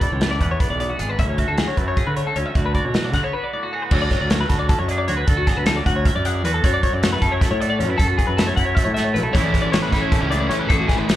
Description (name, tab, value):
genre	math rock and midwest emo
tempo	309 BPM (eighths)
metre	7/8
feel	straight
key	unclear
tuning	A4 = 436 Hz
part	twangy electric guitar	accompaniment	0.0-11.2 s	E2 to A4	-26 LUFS	right 6 dB	slapback echo
part	twelve-string electric guitar	arpeggios	0.0-11.2 s	F#4 to F#5	-24 LUFS	left 5 dB	wide subtle chorus, slapback echo
part	fuzz fingered electric bass	bass	0.0-11.2 s	G#1 to D3	-23 LUFS	equal	overdrive
part	loose indie drum kit	drums	0.0-11.2 s	crash cymbal, hi-hat, kick drum, snare drum	-20 LUFS	equal	none
part	overdriven electric guitar	riff	9.3-11.2 s	A2 to E4	-23 LUFS	equal	slapback echo
room	little or no reverb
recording	live gig heard through the venue's PA, club ambience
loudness	-17 LUFS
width	side -13 dB against mid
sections	0.0-3.9 A section; 3.9-11.2 B section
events	break 3.3-3.9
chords	0.0 E9; 1.2 Bm11/D; 2.6 D6; 3.9 Dmaj7; 6.6 F#m7; 9.3 Amaj9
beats	0.01 0.21 0.40 0.60 0.80 0.99 | 1.19 1.38 1.58 1.77 1.97 2.17 2.36 | 2.56 2.75 2.95 3.14 3.34 3.53 3.73 | 3.92 4.12 4.31 4.51 4.70 4.90 5.09 | 5.28 5.48 5.67 5.87 6.06 6.25 6.45 | 6.64 6.83 7.03 7.22 7.42 7.61 7.80 | 8.00 8.19 8.38 8.58 8.77 8.96 9.15 | 9.35 9.54 9.73 9.93 10.12 10.31 10.51 | 10.70 10.89 11.08